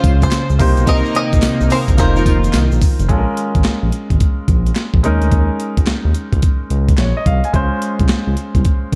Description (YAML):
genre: R&B, new jack swing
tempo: 108 BPM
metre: 4/4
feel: swing 65% on 16ths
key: Bb dorian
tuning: A4 = 439 Hz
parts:
  - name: bluegrass banjo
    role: melody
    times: 0.0-2.5 s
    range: Bb4 to F5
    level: -25 LUFS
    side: equal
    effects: tape echo
  - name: clear baby grand piano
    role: accompaniment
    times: 0.0-9.0 s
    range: Ab3 to Ab5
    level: -24 LUFS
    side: equal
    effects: none
  - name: chorused pulse-width pad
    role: sustained chords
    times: 0.0-3.1 s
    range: C3 to C5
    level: -24 LUFS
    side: equal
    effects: none
  - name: warm studio string section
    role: stabs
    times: 0.0-2.3 s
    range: C4 to Bb4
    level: -26 LUFS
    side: equal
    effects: none
  - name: smooth gliding synth bass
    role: bass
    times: 0.0-9.0 s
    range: F1 to Eb2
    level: -19 LUFS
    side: equal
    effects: none
  - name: breakbeat sampler-style drum kit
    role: drums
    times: 0.0-9.0 s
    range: handclaps, hi-hat, kick drum, snare drum, tambourine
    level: -18 LUFS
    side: equal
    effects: none
  - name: egg shaker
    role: percussion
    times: 0.2-3.1 s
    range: none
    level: -41 LUFS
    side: equal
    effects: none
room: light reverb, small room ambience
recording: dark, warm production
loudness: -15 LUFS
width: mono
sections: 0.0-3.1 A section; 3.1-9.0 B section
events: none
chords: 0.0 Dbmaj7; 0.6 Cm7; 2.0 F7sus4; 3.1 Bbm7; 5.0 Eb7sus4; 7.5 Dbmaj7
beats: 0.32 | 0.87 1.43 1.98 2.54 | 3.10 3.65 4.21 4.76 | 5.32 5.87 6.43 6.98 | 7.54 8.10 8.65